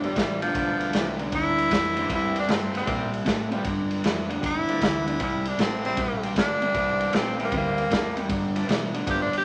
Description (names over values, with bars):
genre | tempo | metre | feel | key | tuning
electric blues shuffle | 155 BPM | 4/4 | swing 67% on 8ths | unclear | A4 = 440 Hz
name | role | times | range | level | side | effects
edgy tenor saxophone | melody | 0.0-9.4 s | F3 to G4 | -28 LUFS | equal | none
bright tonewheel organ | accompaniment | 0.0-9.3 s | E3 to F4 | -37 LUFS | equal | slow rotary speaker, overdrive
electric guitar through a small old amp | riff | 0.0-9.4 s | G2 to A3 | -31 LUFS | equal | harmonic tremolo
hollow-body short-scale fingered electric bass | bass | 0.0-9.4 s | G1 to B2 | -37 LUFS | equal | none
raw garage drum kit | drums | 0.0-9.4 s | kick drum, ride cymbal, snare drum | -30 LUFS | equal | none
room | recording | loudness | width
light reverb | none | -25 LUFS | mono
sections
0.0-9.4 A section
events
tenor saxophone solo 0.0-9.4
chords
0.0 G7; 2.1 C7; 3.6 G7; 5.2 C7; 8.3 G7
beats
0.16 | 0.55 0.94 1.32 1.71 | 2.10 2.49 2.87 3.26 | 3.65 4.04 4.42 4.81 | 5.20 5.58 5.97 6.36 | 6.74 7.13 7.52 7.91 | 8.29 8.68 9.06